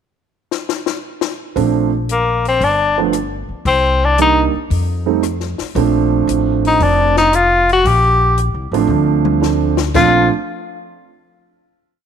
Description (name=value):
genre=jazz, small-group swing and bop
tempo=114 BPM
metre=4/4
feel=swing 69% on 8ths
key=Bb major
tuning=A4 = 442 Hz
part: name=compact cocktail drum kit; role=drums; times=0.5-10.1 s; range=crash cymbal, hi-hat, kick drum, rim click, snare drum, toms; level=-24 LUFS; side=left 10 dB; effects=none
part: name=warm concert grand piano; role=accompaniment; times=1.6-10.3 s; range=F3 to Eb4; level=-17 LUFS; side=right 10 dB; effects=none
part: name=upright bass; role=bass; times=1.6-10.3 s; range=F1 to F2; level=-18 LUFS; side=left 1 dB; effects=none
part: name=clear tenor saxophone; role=melody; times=2.1-10.3 s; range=Bb3 to G4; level=-14 LUFS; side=left 2 dB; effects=none
room=light reverb, studio reverb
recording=1960s-style stereo with parts hard left and right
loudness=-13 LUFS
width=side -8 dB against mid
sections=0.0-1.6 pickup bar; 1.6-9.9 A section; 9.9-12.0 final chord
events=drum fill 0.5-1.6, 8.9-9.9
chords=0.0 N.C.; 1.6 Bbmaj9; 2.6 G7; 3.7 Cm9; 4.7 F7; 5.8 Bbmaj9